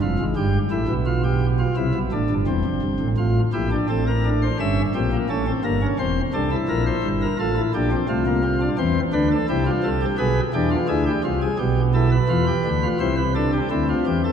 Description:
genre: classical, baroque-style 3-part fugue for pipe organ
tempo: 86 BPM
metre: 4/4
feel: straight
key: F major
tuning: A4 = 443 Hz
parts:
  - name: pipe organ, sparkling flutes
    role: solo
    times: 0.0-14.3 s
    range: E1 to E5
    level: -19 LUFS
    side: equal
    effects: none
room: wet church reverb, RT60 3.4 s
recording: dark, warm production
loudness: -19 LUFS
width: side -8 dB against mid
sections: 0.0-3.2 A section; 3.2-14.3 B section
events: none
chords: 0.4 G7; 1.8 C; 3.2 F/A; 4.6 Edim7/G; 6.0 C7/E; 7.4 F/A; 8.8 C; 10.2 Bdim7; 11.6 G7/B; 13.0 C

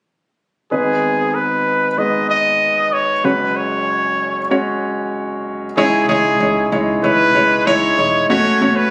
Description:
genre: piano-driven pop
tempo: 95 BPM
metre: 4/4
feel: straight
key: C# minor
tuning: A4 = 440 Hz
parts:
  - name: clear trumpet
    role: melody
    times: 0.7-8.9 s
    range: G#4 to D#5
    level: -18 LUFS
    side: equal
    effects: none
  - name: warm concert grand piano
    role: accompaniment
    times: 0.7-8.9 s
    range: F#1 to C#5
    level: -20 LUFS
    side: equal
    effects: none
  - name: upright bass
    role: bass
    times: 5.8-8.9 s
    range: E1 to C#2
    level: -29 LUFS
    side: equal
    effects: none
room: light reverb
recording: recorded on a phone in the room, club reverb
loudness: -16 LUFS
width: mono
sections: 0.7-5.8 A section; 5.8-8.9 B section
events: none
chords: 0.7 G#m; 3.2 F#sus2; 5.8 C#madd9; 8.3 F#m

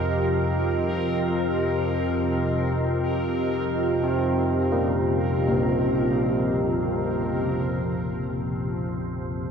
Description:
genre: dark ambient drone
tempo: free time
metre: none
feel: none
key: unclear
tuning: A4 = 440 Hz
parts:
  - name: deep dark ambient pad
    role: sustained chords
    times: 0.0-9.5 s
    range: F4 to Eb5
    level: -27 LUFS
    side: equal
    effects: chorus, built-in reverb
  - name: organ-like drone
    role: drone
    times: 0.0-9.5 s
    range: F2 to C3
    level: -26 LUFS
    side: equal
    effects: ensemble chorus, built-in reverb
  - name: bubbling stepped-filter texture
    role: texture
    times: 0.0-7.7 s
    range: Bb4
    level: -34 LUFS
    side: right 2 dB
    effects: chorus, built-in reverb
  - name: carillon bells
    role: arpeggios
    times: 4.0-9.5 s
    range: Bb2 to C4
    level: -27 LUFS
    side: equal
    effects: diffuse ambient delay
room: wet plate reverb, RT60 2.7 s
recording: dreamy mix soaked in reverb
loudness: -22 LUFS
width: side -6 dB against mid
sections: 0.0-7.6 A section; 7.6-9.5 B section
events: none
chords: 0.0 Fsus2

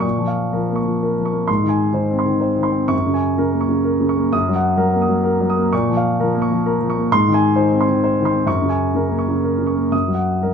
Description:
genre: neoclassical minimalist piano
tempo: 127 BPM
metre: 3/4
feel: uneven beats, rubato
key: Bb minor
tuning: A4 = 440 Hz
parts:
  - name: warm concert grand piano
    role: solo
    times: 0.0-10.5 s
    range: Gb2 to Eb6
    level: -16 LUFS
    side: equal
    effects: none
room: moderate studio reverb, RT60 0.9 s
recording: minimal, uncompressed stereo recording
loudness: -16 LUFS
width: side -6 dB against mid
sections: 0.0-10.5 A section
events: none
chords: 0.0 Bbm; 1.5 Ab; 2.9 Gbadd9; 4.3 Ebm/Gb; 5.7 Bbm; 7.1 Ab; 8.5 Gbadd9; 9.9 Ebm/Gb

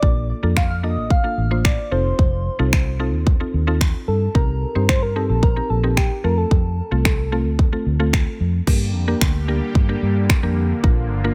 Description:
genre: dance-pop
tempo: 111 BPM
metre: 4/4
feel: straight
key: unclear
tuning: A4 = 441 Hz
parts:
  - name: soft struck synth lead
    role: melody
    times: 0.0-8.1 s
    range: G4 to F5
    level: -28 LUFS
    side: equal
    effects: chorus, digital delay
  - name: mallet-like synth pluck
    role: accompaniment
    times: 0.0-11.3 s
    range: A3 to C5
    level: -28 LUFS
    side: equal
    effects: chorus, sidechain pumping
  - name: vintage muted fingered electric bass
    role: bass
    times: 0.0-11.3 s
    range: F1 to G2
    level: -23 LUFS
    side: equal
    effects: sidechain pumping
  - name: pop drum kit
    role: drums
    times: 0.0-11.0 s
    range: crash cymbal, finger snaps, kick drum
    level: -20 LUFS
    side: equal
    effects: none
  - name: filtered supersaw swell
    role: sustained chords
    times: 8.7-11.3 s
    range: D3 to G4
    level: -31 LUFS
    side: equal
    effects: sidechain pumping
room: digital ambience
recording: none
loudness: -19 LUFS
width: mono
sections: 0.0-8.7 A section; 8.7-11.3 B section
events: none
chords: 0.0 Bbmaj7; 1.9 F7; 4.3 Cm7; 6.2 F; 8.7 Gm; 10.8 Bb

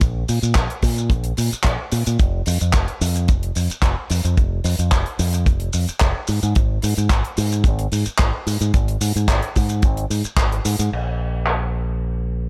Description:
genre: nu-disco, nu disco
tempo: 110 BPM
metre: 4/4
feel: straight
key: unclear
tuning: A4 = 441 Hz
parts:
  - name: fingered electric bass with an envelope filter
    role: bass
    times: 0.0-12.5 s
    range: F1 to Bb2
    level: -23 LUFS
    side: equal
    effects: none
  - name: damped 70s drum kit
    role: drums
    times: 0.0-11.6 s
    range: crash cymbal, handclaps, hi-hat, shaker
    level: -27 LUFS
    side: equal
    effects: low-pass filter on hats, low-pass filter on cymbals, low-pass filter on perc, low-pass filter on snare, low-pass filter on room
  - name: kick drum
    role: drums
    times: 0.0-10.5 s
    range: none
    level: -20 LUFS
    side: equal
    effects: none
room: little or no reverb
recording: none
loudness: -20 LUFS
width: mono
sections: 0.0-10.9 A section; 10.9-12.5 B section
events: none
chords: none

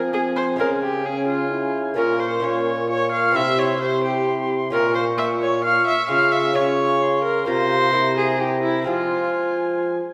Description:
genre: classical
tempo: 131 BPM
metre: 3/4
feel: straight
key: F harmonic minor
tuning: A4 = 439 Hz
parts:
  - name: clear oboe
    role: melody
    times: 0.0-10.0 s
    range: Ab5 to Db6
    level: -31 LUFS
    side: equal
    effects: none
  - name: lute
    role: accompaniment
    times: 0.0-10.1 s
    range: Bb2 to F4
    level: -31 LUFS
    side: equal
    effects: none
  - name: mellow trombone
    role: accompaniment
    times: 0.0-10.0 s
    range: C4 to F4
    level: -30 LUFS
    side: equal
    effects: none
  - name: dark bassoon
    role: bass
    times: 0.0-10.0 s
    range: Bb2 to F3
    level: -27 LUFS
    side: equal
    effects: none
  - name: rich viola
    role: second line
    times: 0.1-9.8 s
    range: E4 to F5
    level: -24 LUFS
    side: equal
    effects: none
room: wet scoring stage reverb, RT60 1.8 s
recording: recorded in a church or concert hall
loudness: -20 LUFS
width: mono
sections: 0.0-10.1 A section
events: none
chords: 0.0 Fm; 0.6 Db; 2.0 Bbm; 3.3 C; 4.7 Bbm; 6.1 Db; 7.5 C7sus4; 7.9 C7; 8.9 Fm

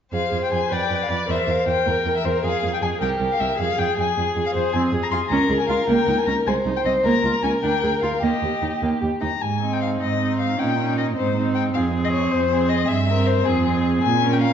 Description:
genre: quick classical-period movement for string quartet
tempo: 104 BPM (dotted quarters)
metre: 6/8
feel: straight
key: F minor, Ab major from 4.7 s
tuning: A4 = 440 Hz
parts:
  - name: rich violin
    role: melody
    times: 0.1-14.5 s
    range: Ab4 to C6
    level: -24 LUFS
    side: left 9 dB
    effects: none
  - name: warm violin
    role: second line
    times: 0.1-14.5 s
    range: Eb4 to D5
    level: -25 LUFS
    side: left 1 dB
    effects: none
  - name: rich viola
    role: accompaniment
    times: 0.1-14.5 s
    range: Ab3 to B4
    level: -24 LUFS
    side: right 3 dB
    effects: none
  - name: rich cello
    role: bass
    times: 0.1-14.5 s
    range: C2 to Bb2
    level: -25 LUFS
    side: right 4 dB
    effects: none
room: wet recital hall reverb, RT60 1.4 s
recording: dark, warm production, nothing above 7.6 kHz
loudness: -19 LUFS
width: side -8 dB against mid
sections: 0.1-9.4 A section; 9.4-14.5 B section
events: none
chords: 0.1 Fm; 0.7 G7; 1.3 C7/E; 2.4 Fm; 3.0 C5; 3.6 Fm; 5.3 Bbm7/Db; 5.9 Eb7; 6.5 Ab; 7.1 Bbm; 7.6 Bb7/D; 8.2 Eb; 9.4 Ab; 10.6 Eb7/Bb; 11.2 Ab; 11.7 Fm; 12.9 C7/G; 13.5 Fm

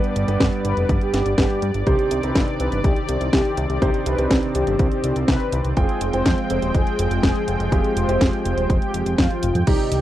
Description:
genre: italo disco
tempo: 123 BPM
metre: 4/4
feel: straight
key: unclear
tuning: A4 = 442 Hz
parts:
  - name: mellow synth brass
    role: melody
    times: 0.0-10.0 s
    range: Eb4 to D5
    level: -25 LUFS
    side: left 1 dB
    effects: chorus, tremolo, tape echo
  - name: lush unison pad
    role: sustained chords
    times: 0.0-10.0 s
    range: Eb3 to G5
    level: -27 LUFS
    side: equal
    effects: chorus
  - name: dark grand piano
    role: stabs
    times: 0.0-10.0 s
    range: G2 to G5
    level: -27 LUFS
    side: right 2 dB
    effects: none
  - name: house drum kit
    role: drums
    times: 0.0-10.0 s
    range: crash cymbal, hi-hat, snare drum, toms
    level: -24 LUFS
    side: equal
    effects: overdrive
  - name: fat analog bass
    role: bass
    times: 0.2-10.0 s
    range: Eb1 to G2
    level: -23 LUFS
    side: equal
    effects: none
  - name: electronic kick drum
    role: drums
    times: 0.4-9.8 s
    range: none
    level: -21 LUFS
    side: equal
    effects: overdrive
room: light reverb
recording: dry, close 1970s-style studio recording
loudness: -18 LUFS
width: side -13 dB against mid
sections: 0.0-9.7 A section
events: drum fill 9.3-9.7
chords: 0.0 G; 1.9 Cmadd9; 5.8 Fmadd9

